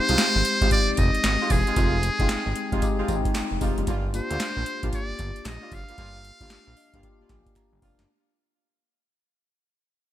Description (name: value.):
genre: R&B, new jack swing.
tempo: 114 BPM.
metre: 4/4.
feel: swing 64% on 16ths.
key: unclear.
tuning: A4 = 441 Hz.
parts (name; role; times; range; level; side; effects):
trumpet with metal mute; melody; 0.0-7.6 s; Ab4 to F5; -26 LUFS; equal; none.
mellow tine electric piano; accompaniment; 0.0-8.1 s; Ab3 to Bb5; -30 LUFS; left 4 dB; analog chorus.
mellow horn section; stabs; 0.1-8.0 s; G3 to F4; -34 LUFS; right 3 dB; none.
fat analog bass; bass; 0.1-8.1 s; E1 to D2; -27 LUFS; right 1 dB; none.
booming analog drum machine; drums; 0.1-8.1 s; handclaps, hi-hat, kick drum, snare drum, tambourine; -26 LUFS; equal; gated reverb.
group handclap; percussion; 0.2-7.7 s; none; barely audible; none; none.
room: light reverb, digital ambience.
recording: bright 1980s-style digital production.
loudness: -21 LUFS.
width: side -13 dB against mid.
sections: 0.0-8.1 A section.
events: fade-out 0.0-8.1; tine electric piano fill 6.5-8.1; drum fill 7.6-8.1.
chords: 0.0 Fm7; 3.9 Gm7.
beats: 0.19 0.71 1.24 | 1.77 2.29 2.82 3.35 | 3.87 4.40 4.92 5.45 | 5.98 6.50 7.03 7.56.